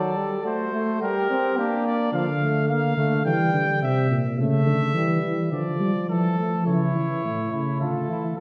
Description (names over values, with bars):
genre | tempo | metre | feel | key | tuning
classical, imitative canzona for brass ensemble | 106 BPM | 4/4 | straight | unclear | A4 = 441 Hz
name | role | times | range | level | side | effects
clear trumpet | melody | 0.0-8.4 s | G4 to G5 | -31 LUFS | equal | none
mellow flugelhorn | second line | 0.0-2.1, 6.7-8.2 s | D4 to A4 | -32 LUFS | equal | none
warm trombone | accompaniment | 0.0-8.4 s | E3 to C4 | -29 LUFS | equal | none
mellow tuba | bass | 2.1-8.4 s | A2 to G3 | -25 LUFS | equal | none
room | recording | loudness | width
wet scoring stage reverb, RT60 1.5 s | heard from further back in the room, nothing above 10.9 kHz | -23 LUFS | mono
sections
0.0-6.7 A section; 6.7-8.4 B section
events
none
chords
0.0 D/F#; 1.0 Gm; 2.1 Dm; 3.3 Edim; 4.4 A/C#; 5.5 Dm; 6.7 A/C#; 7.8 Dm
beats
0.46 1.02 1.58 | 2.14 2.69 3.25 3.82 | 4.38 4.94 5.51 6.08 | 6.66 7.24 7.80 8.38